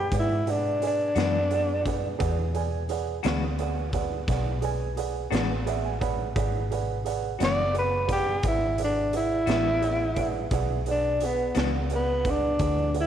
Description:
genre	slow blues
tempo	58 BPM (dotted quarters)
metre	12/8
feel	straight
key	E mixolydian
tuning	A4 = 440 Hz
part	growling tenor saxophone	melody	0.0-13.1 s	B3 to D5	-26 LUFS	equal	none
part	dark grand piano	accompaniment	0.0-13.1 s	G#4 to B5	-31 LUFS	right 11 dB	none
part	vintage muted fingered electric bass	bass	0.0-13.1 s	F#1 to G#2	-30 LUFS	left 1 dB	none
part	raw garage drum kit	drums	0.1-13.1 s	hi-hat, kick drum, snare drum	-32 LUFS	equal	none
part	clean electric guitar	accompaniment	1.1-11.8 s	E3 to F#4	-34 LUFS	left 11 dB	tremolo
room	moderate plate reverb, RT60 2.8 s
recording	1960s-style stereo with parts hard left and right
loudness	-24 LUFS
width	side -9 dB against mid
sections	0.0-13.1 A section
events	grand piano fill 5.3-6.4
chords	0.0 E9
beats	0.12 1.16 | 2.20 3.24 4.28 5.32 | 6.36 7.40 8.44 9.48 | 10.52 11.56 12.60

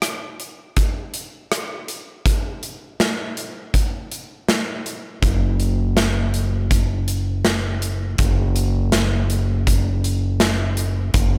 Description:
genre	post-rock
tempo	81 BPM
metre	4/4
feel	straight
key	unclear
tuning	A4 = 441 Hz
part	big rock drum kit	drums	0.0-11.3 s	hi-hat, kick drum, rim click, snare drum	-23 LUFS	equal	none
part	growling fingered electric bass	bass	5.2-11.4 s	F#1	-22 LUFS	equal	overdrive
room	little or no reverb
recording	none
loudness	-21 LUFS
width	mono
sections	0.0-11.4 A section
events	none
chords	none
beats	0.03 0.77 1.52 | 2.26 3.00 3.75 4.49 | 5.23 5.97 6.71 7.45 | 8.19 8.93 9.67 10.41 | 11.15

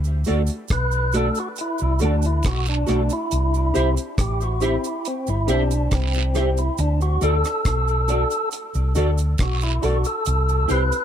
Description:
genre	roots reggae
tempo	69 BPM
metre	4/4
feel	straight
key	D mixolydian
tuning	A4 = 441 Hz
part	hollow-body short-scale fingered electric bass	bass	0.0-10.9 s	G1 to D2	-21 LUFS	equal	none
part	cabasa and guiro	percussion	0.0-11.0 s	none	-34 LUFS	right 8 dB	none
part	mellow electric guitar	accompaniment	0.3-10.8 s	E4 to E5	-29 LUFS	right 4 dB	ensemble chorus, tape echo
part	dark upright piano	stabs	0.3-10.9 s	A3 to A4	-27 LUFS	left 4 dB	none
part	deep reggae drum kit	drums	0.3-11.0 s	hi-hat, kick drum, rim click	-26 LUFS	equal	none
part	tonewheel organ	melody	0.7-11.0 s	C4 to B4	-25 LUFS	equal	overdrive, fast rotary speaker, tape echo
room	little or no reverb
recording	none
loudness	-19 LUFS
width	side -9 dB against mid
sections	0.0-11.0 A section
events	tonewheel organ solo 0.0-11.0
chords	0.0 D; 3.3 C; 6.8 D; 10.3 C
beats	0.71 1.58 2.45 | 3.32 4.19 5.05 5.92 | 6.79 7.66 8.53 9.39 | 10.26

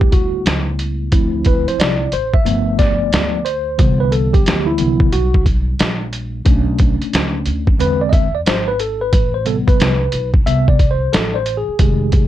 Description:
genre	hip hop, jazz-hop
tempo	90 BPM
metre	4/4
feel	swing 63% on 16ths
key	unclear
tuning	A4 = 441 Hz
part	tine electric piano	accompaniment	0.0-12.3 s	C3 to E5	-19 LUFS	equal	medium stereo tremolo
part	upright bass	bass	0.0-12.3 s	F1 to E2	-20 LUFS	equal	none
part	trip hop sampler-style drum kit	drums	0.0-12.3 s	hi-hat, kick drum, snare drum	-15 LUFS	equal	none
room	little or no reverb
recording	none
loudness	-13 LUFS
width	side -13 dB against mid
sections	0.0-12.3 A section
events	tine electric piano solo 0.0-12.3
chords	0.0 Gmaj13; 1.1 Dm9; 2.5 G9; 3.8 Cmaj9#11; 6.5 Bm7; 7.8 E7b13; 9.1 Am9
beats	0.46 | 1.12 1.79 2.46 3.12 | 3.79 4.46 5.12 5.79 | 6.46 7.12 7.79 8.46 | 9.12 9.79 10.46 11.12 | 11.79

